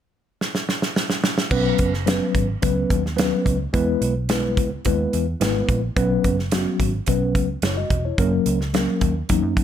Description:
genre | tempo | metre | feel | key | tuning
uptempo 1960s-style soul | 108 BPM | 4/4 | straight | B major | A4 = 440 Hz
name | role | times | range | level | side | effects
natural country drum kit | drums | 0.4-9.6 s | crash cymbal, hi-hat, kick drum, snare drum | -22 LUFS | right 1 dB | none
mellow tine electric piano | accompaniment | 1.5-9.6 s | F#3 to D#5 | -22 LUFS | left 2 dB | medium stereo tremolo
vintage muted picked electric bass | bass | 1.5-9.5 s | E1 to F#2 | -25 LUFS | right 1 dB | none
room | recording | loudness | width
little or no reverb | none | -19 LUFS | side -10 dB against mid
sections
0.0-1.5 A section; 1.5-9.6 B section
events
drum fill 0.4-1.5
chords
0.0 N.C.; 1.5 Bsus2; 3.7 E; 6.0 Bsus2; 8.2 F#

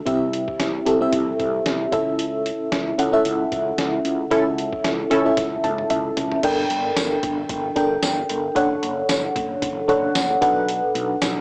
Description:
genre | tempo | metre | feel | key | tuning
1980s-style pop | 113 BPM | 4/4 | swing 55% on 16ths | unclear | A4 = 440 Hz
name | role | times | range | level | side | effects
FM electric piano with tremolo | accompaniment | 0.0-11.4 s | G2 to A5 | -23 LUFS | equal | phaser, cassette tape
mellow fretless electric bass | bass | 0.1-11.4 s | F#1 to C#2 | -33 LUFS | equal | none
trip hop sampler-style drum kit | drums | 0.1-11.4 s | crash cymbal, hi-hat, kick drum, snare drum, toms | -30 LUFS | equal | cassette tape
funky polysynth comp | stabs | 4.3-5.3 s | C#4 to A4 | -24 LUFS | equal | chorus, cassette tape
tambourine | percussion | 7.0-11.4 s | none | -31 LUFS | equal | none
room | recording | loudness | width
moderate studio ambience, RT60 0.5 s | home recording on cassette, small speaker sound | -22 LUFS | mono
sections
0.0-6.4 A section; 6.4-11.4 B section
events
band accent 4.3-6.4; drum fill 5.4-6.4; FM electric piano fill 5.4-6.4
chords
0.1 C; 1.9 A/C#; 6.4 Gmadd9; 8.6 Dmaj7/F#; 10.4 Bm7

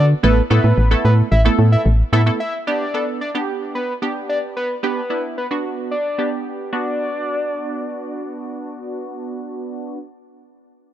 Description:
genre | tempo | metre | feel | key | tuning
dance-pop | 111 BPM | 4/4 | straight | D major | A4 = 440 Hz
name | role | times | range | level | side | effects
fat analog lead | melody | 0.0-8.3 s | B4 to E5 | -23 LUFS | left 1 dB | low-pass filter
funky polysynth comp | accompaniment | 0.0-10.0 s | A3 to A4 | -23 LUFS | right 3 dB | chorus, low-pass filter
solid FM bass | bass | 0.0-2.3 s | A1 to D3 | -13 LUFS | equal | none
room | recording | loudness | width
little or no reverb | none | -17 LUFS | side -12 dB against mid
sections
0.0-2.4 A section; 2.4-6.7 B section; 6.7-10.9 C section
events
drop 0.0-2.4; filter sweep 2.4-6.7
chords
0.2 Asus2; 2.4 G; 6.7 D6

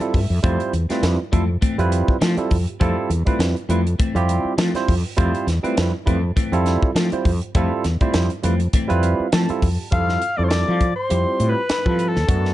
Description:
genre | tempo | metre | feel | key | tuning
electric jazz fusion | 101 BPM | 4/4 | swing 55% on 16ths | F lydian | A4 = 441 Hz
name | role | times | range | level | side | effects
barky tine electric piano | accompaniment | 0.0-12.5 s | G3 to A5 | -24 LUFS | right 4 dB | wide subtle chorus
clean electric guitar | stabs | 0.0-9.7 s | E3 to C4 | -28 LUFS | left 4 dB | wide subtle chorus
fretless electric bass | bass | 0.0-12.5 s | E2 to F3 | -20 LUFS | equal | wide subtle chorus
crisp fusion drum kit | drums | 0.0-12.5 s | hi-hat, kick drum, snare drum | -22 LUFS | equal | none
breathy soprano saxophone | melody | 9.9-12.5 s | A4 to F5 | -23 LUFS | left 1 dB | slapback echo
hollow concert flute | second line | 9.9-12.5 s | A5 to F6 | -27 LUFS | left 5 dB | none
room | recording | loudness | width
little or no reverb | dark, warm production, nothing above 10.8 kHz | -17 LUFS | side -14 dB against mid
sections
0.0-9.9 A section; 9.9-12.5 B section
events
tine electric piano fill 0.0-0.4, 8.7-9.9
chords
0.0 Fmaj7; 9.9 Fmaj9

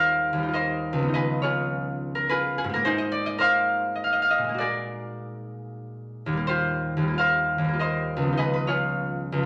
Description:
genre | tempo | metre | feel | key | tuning
classical, solo harp piece | 82-111 BPM | 3/4 | rubato | Eb major | A4 = 444 Hz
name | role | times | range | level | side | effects
concert harp | solo | 0.0-9.5 s | Db2 to F5 | -25 LUFS | equal | none
room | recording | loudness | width
wet stone room reverb, RT60 1.1 s | none | -25 LUFS | mono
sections
0.0-9.5 A section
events
none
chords
0.0 Eb69; 1.1 Db9; 2.8 Abadd9; 4.6 Bbaug7; 6.5 Eb69; 8.4 Db9

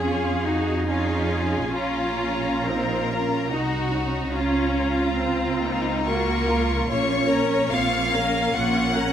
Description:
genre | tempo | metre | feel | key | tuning
classical, slow romantic movement for string orchestra | 60-74 BPM | 3/4 | rubato | unclear | A4 = 441 Hz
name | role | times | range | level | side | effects
warm chamber violin section | melody | 0.0-9.1 s | F5 to Db6 | -31 LUFS | left 4 dB | none
rich studio violin section | second line | 0.0-9.1 s | Eb4 to Gb5 | -26 LUFS | left 3 dB | none
rich chamber viola section | accompaniment | 0.0-9.1 s | Bb3 to Bb4 | -26 LUFS | equal | none
warm chamber double bass section | bass | 0.0-9.1 s | Bb1 to F2 | -28 LUFS | right 3 dB | none
warm studio cello section | bass | 0.0-9.1 s | Bb3 to Gb4 | -28 LUFS | right 2 dB | none
room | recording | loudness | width
light reverb | none | -21 LUFS | side -9 dB against mid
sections
0.0-9.1 A section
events
none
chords
0.0 Db/F; 1.7 Bbm; 4.3 Bbm/Db; 6.9 Bbm

